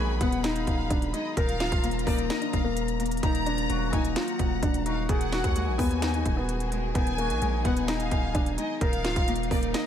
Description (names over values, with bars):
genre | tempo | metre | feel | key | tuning
hip hop, trap | 129 BPM | 4/4 | half-time | unclear | A4 = 443 Hz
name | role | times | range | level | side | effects
felt-muted upright piano | melody | 0.0-9.8 s | Bb3 to Bb4 | -32 LUFS | left 1 dB | none
dark studio violin section | second line | 0.0-9.9 s | D5 to Bb5 | -35 LUFS | left 1 dB | ping-pong delay
Celtic harp | accompaniment | 0.0-9.9 s | Eb3 to Eb5 | -32 LUFS | left 4 dB | none
warm studio string section | sustained chords | 0.0-9.9 s | Eb4 to Cb6 | -37 LUFS | left 2 dB | none
distorted 808-style bass | bass | 0.0-9.7 s | D1 to Eb2 | -31 LUFS | right 1 dB | distortion
trap drum kit | drums | 0.2-9.9 s | hi-hat, kick drum, snare drum | -28 LUFS | equal | none
room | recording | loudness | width
small room ambience | none | -24 LUFS | side -9 dB against mid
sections
0.0-9.9 A section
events
none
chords
0.0 Abm7/Eb; 1.4 Bbsus4; 3.2 Ebmadd9; 5.1 Abm7/Eb; 8.8 Bbsus4